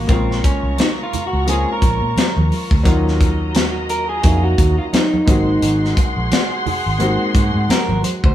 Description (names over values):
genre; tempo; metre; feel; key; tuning
lush 1970s-style soul; 87 BPM; 4/4; swing 58% on 16ths; Eb dorian; A4 = 441 Hz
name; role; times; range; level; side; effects
electric guitar through a small old amp; melody; 0.0-8.3 s; Bb3 to C5; -21 LUFS; right 1 dB; warbly pitch drift
muted studio string section; second line; 0.0-8.3 s; F4 to Db6; -26 LUFS; equal; none
warm grand piano; accompaniment; 0.0-8.3 s; Db3 to F5; -23 LUFS; left 1 dB; none
vintage muted fingered electric bass; bass; 0.0-8.3 s; Ab1 to Bb2; -19 LUFS; equal; none
tight funk drum kit; drums; 0.1-8.3 s; hi-hat, kick drum, snare drum; -17 LUFS; equal; none
congas; percussion; 0.1-8.2 s; none; -25 LUFS; right 3 dB; none
room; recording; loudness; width
moderate studio reverb, RT60 0.6 s; band playing live in one room; -14 LUFS; side -12 dB against mid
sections
0.0-8.3 A section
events
clean electric guitar solo 0.0-8.3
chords
0.1 Bbm7; 2.9 Ebm7; 5.3 Ab7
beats
| 0.10 0.79 1.48 2.17 | 2.86 3.55 4.24 4.93 | 5.62 6.31 7.00 7.69